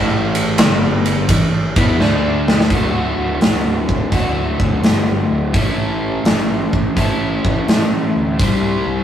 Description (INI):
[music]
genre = blues rock power trio and southern rock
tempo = 84 BPM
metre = 4/4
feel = swing 67% on 8ths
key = D major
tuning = A4 = 438 Hz
[part]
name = overdriven electric guitar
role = riff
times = 0.0-9.0 s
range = D2 to C5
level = -19 LUFS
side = equal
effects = none
[part]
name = fuzz picked electric bass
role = bass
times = 0.0-9.0 s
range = D1 to A2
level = -22 LUFS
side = equal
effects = overdrive
[part]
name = big rock drum kit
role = drums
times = 0.3-8.6 s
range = hi-hat, kick drum, ride cymbal, snare drum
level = -16 LUFS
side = equal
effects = none
[sound]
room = moderate stone room reverb, RT60 1.1 s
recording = rough rehearsal-room recording, warm saturation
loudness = -14 LUFS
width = side -10 dB against mid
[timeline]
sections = 0.0-2.7 A section; 2.7-9.0 B section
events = drum fill 2.0-2.7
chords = 0.0 A5; 0.6 G5; 1.3 A5; 2.0 D5; 2.7 D; 5.5 A; 8.4 C